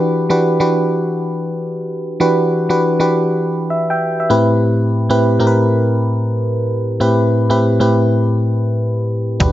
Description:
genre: R&B, new jack swing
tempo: 100 BPM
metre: 4/4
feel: swing 65% on 16ths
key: unclear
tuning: A4 = 440 Hz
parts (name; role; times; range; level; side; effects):
- FM electric piano; accompaniment; 0.0-9.5 s; A2 to G5; -14 LUFS; equal; chorus
- slap-like FM bass; bass; 9.4-9.5 s; E1; -15 LUFS; equal; none
- dusty soul sampler-style drum kit; drums; 9.4-9.5 s; hi-hat, kick drum; -15 LUFS; equal; none
room: light reverb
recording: nothing above 7.7 kHz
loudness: -13 LUFS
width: side -14 dB against mid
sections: 0.0-9.5 A section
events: none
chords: 0.0 Em7; 4.3 Am7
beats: 0.40 1.00 1.60 | 2.20 2.80 3.40 4.00 | 4.60 5.20 5.80 6.40 | 7.00 7.60 8.20 8.80 | 9.40

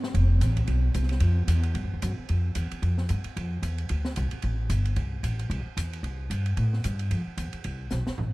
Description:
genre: modal jazz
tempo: 224 BPM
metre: 4/4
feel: swing 58% on 8ths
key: F lydian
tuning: A4 = 440 Hz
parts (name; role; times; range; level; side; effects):
- open jazz drum kit; drums; 0.0-8.3 s; hi-hat, kick drum, ride cymbal, snare drum, toms; -36 LUFS; right 2 dB; none
- upright bass; bass; 0.1-8.3 s; F1 to A2; -25 LUFS; equal; none
room: light reverb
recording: none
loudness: -25 LUFS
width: side -21 dB against mid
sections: 0.1-8.3 A section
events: drum fill 7.9-8.3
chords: none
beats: | 0.14 0.41 0.68 0.95 | 1.22 1.48 1.75 2.02 | 2.29 2.56 2.82 3.09 | 3.36 3.63 3.90 4.16 | 4.43 4.70 4.97 5.24 | 5.50 5.77 6.04 6.31 | 6.58 6.84 7.11 7.38 | 7.65 7.92 8.19

